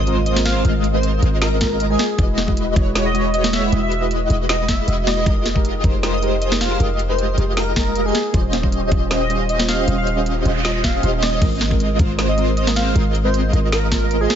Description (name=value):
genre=future bass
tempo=156 BPM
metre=4/4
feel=half-time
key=Ab major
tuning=A4 = 442 Hz
part: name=airy dreamy lead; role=melody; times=0.0-14.3 s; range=Ab4 to F5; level=-24 LUFS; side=equal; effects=chorus, sidechain pumping, dub echo
part: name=airy dreamy lead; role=arpeggios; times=0.0-14.3 s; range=C5 to Eb5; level=-28 LUFS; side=equal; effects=chorus, sidechain pumping, ping-pong delay
part: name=big bright polysynth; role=riff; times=0.0-14.3 s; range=Ab3 to Eb5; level=-24 LUFS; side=equal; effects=ensemble chorus, sidechain pumping
part: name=warm 808-style bass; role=bass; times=0.0-14.3 s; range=Eb1 to Ab1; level=-21 LUFS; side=equal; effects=sidechain pumping
part: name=impact and noise sweep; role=sound effects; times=0.0-0.6, 10.3-11.4 s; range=none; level=-32 LUFS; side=right 1 dB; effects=none
part: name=soft round pluck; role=accompaniment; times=0.1-14.3 s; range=G3 to D#5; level=-25 LUFS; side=right 2 dB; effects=analog chorus, sidechain pumping
part: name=trap drum kit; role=drums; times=0.1-14.4 s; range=crash cymbal, hi-hat, snare drum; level=-23 LUFS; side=equal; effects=none
part: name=electronic kick drum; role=drums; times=1.6-14.0 s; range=none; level=-20 LUFS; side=equal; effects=none
room=digital ambience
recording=nothing above 7.7 kHz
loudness=-16 LUFS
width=side -9 dB against mid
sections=0.0-14.4 A section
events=impact 0.0-0.6; noise sweep 10.3-11.4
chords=0.0 Ab69; 2.0 Emaj9; 5.3 Fm11; 8.1 Eb13; 11.4 Ab69